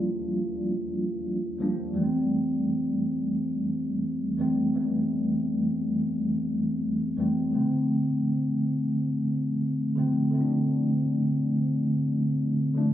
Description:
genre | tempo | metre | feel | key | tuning
R&B | 86 BPM | 4/4 | swing 59% on 16ths | unclear | A4 = 436 Hz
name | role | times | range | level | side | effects
mellow tine electric piano | solo | 0.0-12.9 s | Eb2 to F4 | -24 LUFS | equal | medium stereo tremolo
room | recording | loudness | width
wet echo chamber reverb, RT60 1.4 s | recorded on a phone in the room, club reverb | -24 LUFS | side -12 dB against mid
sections
0.0-12.9 A section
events
none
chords
0.0 Ebmaj9; 1.9 Fmaj9; 7.5 Dm7

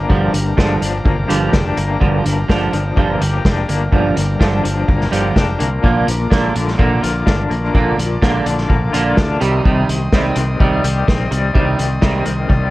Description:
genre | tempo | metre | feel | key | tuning
indie rock | 126 BPM | 4/4 | straight | G minor | A4 = 440 Hz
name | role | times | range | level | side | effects
combo organ | sustained chords | 0.0-12.7 s | F4 to Eb6 | -30 LUFS | left 1 dB | none
electric guitar through a small old amp | riff | 0.0-12.7 s | G2 to G4 | -21 LUFS | left 4 dB | tremolo
twangy electric guitar | riff | 0.0-12.7 s | G2 to Bb3 | -19 LUFS | right 4 dB | lush chorus, analog delay
growling fingered electric bass | bass | 0.0-12.7 s | F1 to D2 | -20 LUFS | equal | overdrive
vintage drum kit | drums | 0.1-12.6 s | hi-hat, kick drum, snare drum | -17 LUFS | equal | none
room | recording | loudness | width
light reverb, studio reverb | worn, warbling old tape, cassette tape, warbly pitch drift | -13 LUFS | side -17 dB against mid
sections
0.0-12.7 A section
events
none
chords
0.0 Gm7; 5.8 Bb; 9.4 Cm

